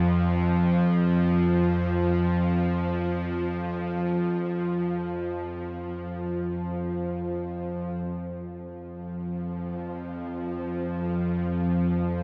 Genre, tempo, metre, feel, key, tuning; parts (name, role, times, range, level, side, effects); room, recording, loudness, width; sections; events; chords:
dark ambient drone; free time; A4 = 440 Hz
bowed-like drone; solo; 0.0-12.2 s; F2 to F3; -27 LUFS; equal; built-in reverb, dub echo
wet echo chamber reverb, RT60 2.3 s; echo-heavy mix; -27 LUFS; mono
0.0-8.0 A section; 8.0-12.2 B section